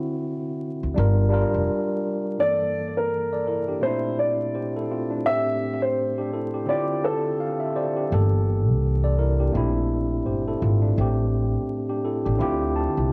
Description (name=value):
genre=hip hop, boom-bap hip-hop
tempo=84 BPM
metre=4/4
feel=swing 59% on 16ths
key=G dorian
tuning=A4 = 440 Hz
part: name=tine electric piano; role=accompaniment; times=0.0-13.1 s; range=G2 to A5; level=-28 LUFS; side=equal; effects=cassette tape, high-pass filter, low-pass filter
part: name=upright bass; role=bass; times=0.8-1.7, 8.1-13.1 s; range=F1 to D2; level=-24 LUFS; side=equal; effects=tube saturation
part: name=dark upright piano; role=melody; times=2.4-8.1 s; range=A4 to E5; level=-28 LUFS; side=equal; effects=high-pass filter, low-pass filter, cassette tape, analog delay
room=moderate small room reverb, RT60 0.5 s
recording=home recording on cassette, vinyl crackle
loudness=-24 LUFS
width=mono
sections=0.0-2.4 A section; 2.4-13.1 B section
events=none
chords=0.0 D9; 1.0 Gm7; 2.4 Gm69; 3.8 Bbmaj9#11; 5.3 Am7; 6.7 Dm11; 8.1 Gm69; 9.5 Bbmaj9#11; 11.0 Am7; 12.4 Dm11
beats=0.26 0.97 1.69 | 2.40 3.11 3.83 4.54 | 5.26 5.97 6.69 7.40 | 8.11 8.83 9.54 10.26 | 10.97 11.69 12.40 13.11